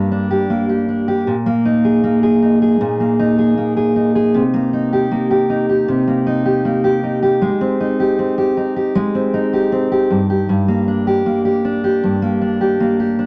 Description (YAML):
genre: pop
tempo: 78 BPM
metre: 4/4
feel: straight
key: C minor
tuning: A4 = 437 Hz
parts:
  - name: fingerpicked steel-string acoustic guitar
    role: solo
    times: 0.0-13.3 s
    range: G2 to Ab4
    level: -16 LUFS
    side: equal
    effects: none
room: moderate studio reverb, RT60 0.6 s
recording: none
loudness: -16 LUFS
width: mono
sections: 0.0-13.3 A section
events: none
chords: 0.0 Gm; 1.3 Bb7sus4; 4.3 Cm7; 7.4 Abmaj7; 10.1 Gm